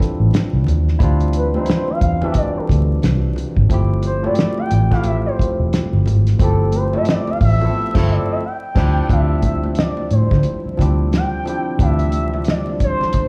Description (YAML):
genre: R&B, neo-soul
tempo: 89 BPM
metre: 4/4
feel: swing 61% on 16ths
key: D minor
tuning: A4 = 440 Hz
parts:
  - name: gliding portamento lead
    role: melody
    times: 0.0-13.3 s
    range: A4 to G5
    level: -26 LUFS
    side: equal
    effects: chorus, slapback echo, tape echo
  - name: barky tine electric piano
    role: accompaniment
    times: 0.0-13.3 s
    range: E3 to A4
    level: -26 LUFS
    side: equal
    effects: slapback echo
  - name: vintage muted fingered electric bass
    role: bass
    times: 0.0-13.0 s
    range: E1 to D3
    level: -19 LUFS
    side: equal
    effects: none
  - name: cloth-damped thuddy drum kit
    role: drums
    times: 0.0-13.3 s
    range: crash cymbal, hi-hat, kick drum, snare drum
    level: -21 LUFS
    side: equal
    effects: none
  - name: congas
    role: percussion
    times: 0.3-13.3 s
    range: none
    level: -33 LUFS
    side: equal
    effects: none
  - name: warm analog pad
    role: sustained chords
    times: 9.1-13.3 s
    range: C3 to E4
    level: -31 LUFS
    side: equal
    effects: none
room: little or no reverb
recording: live gig heard through the venue's PA, club reverb, vinyl crackle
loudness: -17 LUFS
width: mono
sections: 0.0-9.1 A section; 9.1-13.3 B section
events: soft synth lead solo 0.0-9.1; band accent 7.7-9.1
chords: 0.0 Dm11; 3.7 G13sus4; 8.4 Dm11